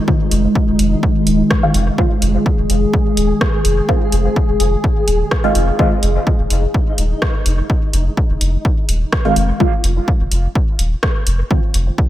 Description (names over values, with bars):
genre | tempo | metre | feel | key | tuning
dub techno | 126 BPM | 4/4 | straight | F minor | A4 = 440 Hz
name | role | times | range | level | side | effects
warbly tape-like pad | sustained chords | 0.0-9.6 s | Eb3 to Ab4 | -20 LUFS | equal | chorus, built-in reverb, sidechain pumping
flickering grainy texture | texture | 0.0-9.6 s | Ab3 to Ab4 | -28 LUFS | left 1 dB | built-in reverb, sidechain pumping
filtered dub chord stab | stabs | 0.1-5.9, 9.2-11.6 s | Eb3 to F4 | -20 LUFS | right 1 dB | phaser, sidechain pumping, dub echo
electronic kick drum | drums | 0.1-12.1 s | none | -17 LUFS | equal | none
warm sub bass | bass | 0.3-11.9 s | Eb1 to F1 | -16 LUFS | equal | sidechain pumping
punchy analog drum machine | drums | 0.3-11.8 s | hi-hat, rim click | -23 LUFS | equal | overdrive, dub echo
room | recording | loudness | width
moderate lush hall reverb, RT60 2.1 s | dreamy mix soaked in reverb | -13 LUFS | side -13 dB against mid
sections
0.0-9.6 A section; 9.6-12.1 A section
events
filter sweep on synth stab 9.6-12.1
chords
0.0 Fm7; 9.6 F7(no3)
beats
| 0.08 0.55 1.03 1.51 | 1.98 2.46 2.94 3.41 | 3.89 4.36 4.84 5.32 | 5.79 6.27 6.74 7.22 | 7.70 8.17 8.65 9.12 | 9.60 10.08 10.55 11.03 | 11.51 11.98